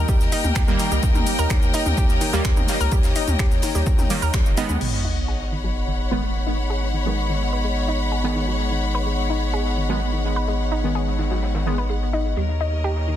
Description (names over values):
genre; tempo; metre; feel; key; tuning
melodic techno; 127 BPM; 4/4; straight; G# minor; A4 = 440 Hz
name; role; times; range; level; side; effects
dark analog pad; sustained chords; 0.0-13.2 s; A#3 to D#5; -30 LUFS; left 2 dB; wide subtle chorus, sidechain pumping
synth brass stab; stabs; 0.0-11.8 s; D#3 to B3; -29 LUFS; right 3 dB; chorus, sidechain pumping, digital delay
round analog bass; bass; 0.0-13.2 s; D#1 to D#2; -24 LUFS; equal; sidechain pumping
clear studio string section; texture; 0.0-13.2 s; A#4 to B5; -28 LUFS; left 4 dB; sidechain pumping
analog pluck; arpeggios; 0.1-13.2 s; D#3 to B4; -29 LUFS; equal; chorus, sidechain pumping, digital delay
deep house drum kit; drums; 0.1-4.9 s; crash cymbal, finger snaps, hi-hat, shaker, toms; -29 LUFS; left 1 dB; overdrive, soft clipping on snare
deep reggae drum kit; drums; 0.1-13.2 s; hi-hat, snare drum; -41 LUFS; left 2 dB; none
electronic kick drum; drums; 0.1-4.4 s; none; -20 LUFS; equal; overdrive
sub drop; sound effects; 4.8-6.7 s; none; -29 LUFS; equal; none
room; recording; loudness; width
light reverb; dense, heavily limited modern master; -19 LUFS; side -11 dB against mid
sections
0.0-4.8 A section; 4.8-13.2 B section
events
drop 0.0-4.8; band accent 4.3; impact 4.8-6.7; filter sweep on synth stab 4.8-13.2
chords
0.0 D#; 4.8 G#m; 12.4 D#